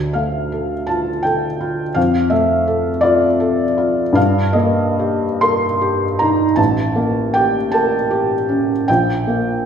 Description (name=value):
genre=classical, romantic nocturne for solo piano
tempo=45-56 BPM (dotted quarters)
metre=12/8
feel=rubato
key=D minor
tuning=A4 = 440 Hz
part: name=felt-muted upright piano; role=solo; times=0.0-9.7 s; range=A1 to C6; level=-14 LUFS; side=equal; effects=none
room=wet recital hall reverb, RT60 1.3 s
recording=heard from further back in the room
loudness=-14 LUFS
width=side -7 dB against mid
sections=0.0-9.7 A section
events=none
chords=0.0 Dm; 2.0 Dm/F; 4.2 Eb/G; 6.6 A7b9; 8.9 N.C.